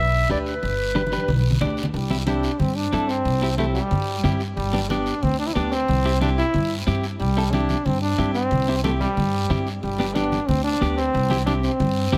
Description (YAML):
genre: latin, cumbia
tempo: 183 BPM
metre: 4/4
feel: straight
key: C major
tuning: A4 = 440 Hz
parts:
  - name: warm clarinet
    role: melody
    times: 0.0-1.6 s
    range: B4 to E5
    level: -27 LUFS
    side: equal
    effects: none
  - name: upright bass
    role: bass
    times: 0.0-12.2 s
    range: G1 to G2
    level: -27 LUFS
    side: equal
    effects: none
  - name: clean electric guitar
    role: accompaniment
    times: 0.3-12.2 s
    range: B3 to D5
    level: -30 LUFS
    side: equal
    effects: spring reverb
  - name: congas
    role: percussion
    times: 0.3-12.2 s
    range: none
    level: -29 LUFS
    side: equal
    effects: none
  - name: guiro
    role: percussion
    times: 0.3-12.2 s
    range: none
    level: -38 LUFS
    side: equal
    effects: none
  - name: bright trombone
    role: second line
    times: 1.9-12.2 s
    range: G3 to E4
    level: -27 LUFS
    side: equal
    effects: none
room: light reverb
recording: none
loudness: -22 LUFS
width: mono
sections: 0.0-1.9 A section; 1.9-12.2 B section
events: drum fill 1.0-1.9; trombone solo 1.9-12.2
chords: 0.0 G; 1.9 C; 4.6 G; 5.9 C; 9.8 G; 11.1 C